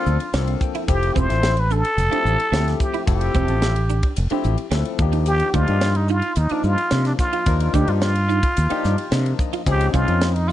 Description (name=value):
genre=electric jazz fusion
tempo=109 BPM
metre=4/4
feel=straight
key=unclear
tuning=A4 = 440 Hz
part: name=trumpet with plunger mute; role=melody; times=0.0-10.5 s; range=D4 to C5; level=-23 LUFS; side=right 1 dB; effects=slapback echo
part: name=barky tine electric piano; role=accompaniment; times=0.0-10.5 s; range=F3 to G5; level=-27 LUFS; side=left 11 dB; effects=analog chorus
part: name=clean electric guitar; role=stabs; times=0.0-10.5 s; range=C4 to F4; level=-29 LUFS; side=right 10 dB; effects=ensemble chorus
part: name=mellow fretless electric bass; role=bass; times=0.1-10.5 s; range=E1 to C3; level=-20 LUFS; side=equal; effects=none
part: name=tight funk drum kit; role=drums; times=0.1-10.5 s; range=hi-hat, kick drum, ride cymbal, snare drum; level=-25 LUFS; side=equal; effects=none
room=light reverb, small room ambience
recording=dark, warm production, nothing above 10.4 kHz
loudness=-17 LUFS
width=side -13 dB against mid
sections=0.0-10.5 A section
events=tine electric piano fill 0.1-0.9, 8.6-9.7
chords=0.0 Bbmaj9; 0.9 Fmaj9; 5.0 Ebmaj9; 9.7 Dbmaj9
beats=0.33 | 0.88 1.43 1.98 2.53 | 3.08 3.63 4.17 4.72 | 5.27 5.82 6.37 6.92 | 7.47 8.02 8.56 9.11 | 9.66 10.21